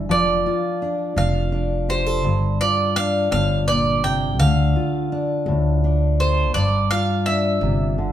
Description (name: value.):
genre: acoustic folk duo or small band.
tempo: 56 BPM (dotted quarters).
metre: 6/8.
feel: straight.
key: unclear.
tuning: A4 = 439 Hz.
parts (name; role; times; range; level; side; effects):
fingerpicked steel-string acoustic guitar; accompaniment; 0.0-8.1 s; G2 to A4; -22 LUFS; left 1 dB; none.
upright bass; bass; 0.0-8.1 s; F1 to D2; -21 LUFS; equal; none.
bowl-back mandolin; melody; 0.1-8.1 s; C5 to G5; -22 LUFS; right 2 dB; none.
room: moderate large studio reverb, RT60 1.0 s.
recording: band playing live in one room.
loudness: -18 LUFS.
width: side -11 dB against mid.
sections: 0.0-8.1 A section.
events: none.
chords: 0.1 F5; 2.2 Gm7; 4.4 Dm; 6.5 G5.